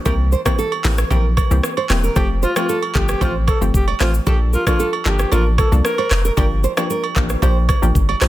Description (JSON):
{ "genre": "afrobeats", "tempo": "114 BPM", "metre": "4/4", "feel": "straight", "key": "F major", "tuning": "A4 = 441 Hz", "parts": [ { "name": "analog pluck", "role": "accompaniment", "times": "0.1-8.3 s", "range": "E3 to A4", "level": "-24 LUFS", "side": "left 3 dB", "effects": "chorus" }, { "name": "nylon-string guitar", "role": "riff", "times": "0.1-8.3 s", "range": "A4 to D5", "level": "-25 LUFS", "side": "right 5 dB", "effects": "digital delay" }, { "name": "punchy sub bass", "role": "bass", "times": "0.1-8.3 s", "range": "E1 to C2", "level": "-17 LUFS", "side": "equal", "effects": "none" }, { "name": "afro-pop drum kit", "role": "drums", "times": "0.1-8.3 s", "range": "handclaps, hi-hat, kick drum, rim click, shaker", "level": "-19 LUFS", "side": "equal", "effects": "none" }, { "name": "agogo bells", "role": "percussion", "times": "0.1-8.2 s", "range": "none", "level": "-27 LUFS", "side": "right 9 dB", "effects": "none" }, { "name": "breathy alto saxophone", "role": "melody", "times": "2.2-6.2 s", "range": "F4 to Bb4", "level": "-24 LUFS", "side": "left 1 dB", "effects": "digital delay" } ], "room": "digital ambience", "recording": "dense, heavily limited modern master", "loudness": "-15 LUFS", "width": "side -15 dB against mid", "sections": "0.0-8.3 A section", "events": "none", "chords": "0.1 C7; 2.2 Fadd9; 4.3 Bbmaj7; 6.4 Gm7", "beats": "| 0.06 0.58 1.11 1.64 | 2.16 2.69 3.21 3.74 | 4.27 4.79 5.32 5.85 | 6.37 6.90 7.43 7.95" }